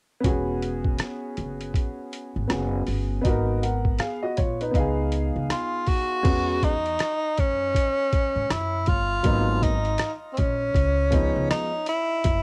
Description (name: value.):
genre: hip hop, jazz-hop.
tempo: 80 BPM.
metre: 4/4.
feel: swing 62% on 16ths.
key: E major.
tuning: A4 = 440 Hz.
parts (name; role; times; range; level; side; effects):
clear upright piano; accompaniment; 0.2-11.7 s; E#3 to F#5; -30 LUFS; equal; cassette tape.
upright bass; bass; 0.2-12.4 s; E1 to G#2; -30 LUFS; equal; none.
boom bap sampler-style drum kit; drums; 0.2-12.4 s; crash cymbal, hi-hat, kick drum, rim click; -27 LUFS; equal; cassette tape.
breathy tenor saxophone; melody; 5.5-12.4 s; C4 to F#4; -27 LUFS; equal; tape echo.
room: light reverb.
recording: home recording on cassette.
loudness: -25 LUFS.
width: mono.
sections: 0.2-6.2 A section; 6.2-12.4 B section.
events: none.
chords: 0.2 E69; 3.2 G#m9; 4.7 C#7; 6.2 E69; 9.2 G#m9; 10.7 C#7.